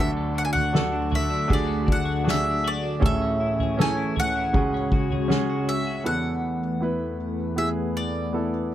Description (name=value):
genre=pop ballad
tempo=79 BPM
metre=4/4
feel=straight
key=unclear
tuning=A4 = 440 Hz
part: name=mandolin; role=melody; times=0.0-8.7 s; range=D5 to G#5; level=-28 LUFS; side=equal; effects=none
part: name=clear baby grand piano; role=accompaniment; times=0.0-8.7 s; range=A1 to B4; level=-27 LUFS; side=right 2 dB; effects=none
part: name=sweeping resonant pad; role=sustained chords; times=0.0-8.7 s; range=D2 to G#5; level=-29 LUFS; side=left 1 dB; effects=chorus
part: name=twelve-string electric guitar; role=arpeggios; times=0.0-6.1 s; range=C#3 to G#4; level=-32 LUFS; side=left 5 dB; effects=none
part: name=soft-mallet drum kit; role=drums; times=0.6-5.5 s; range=kick drum, snare drum, toms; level=-25 LUFS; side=equal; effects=none
room=little or no reverb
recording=none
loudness=-22 LUFS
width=side -12 dB against mid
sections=0.0-6.1 A section; 6.1-8.7 B section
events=none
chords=0.0 D; 3.0 Amaj7; 4.5 C#sus4; 6.1 Esus4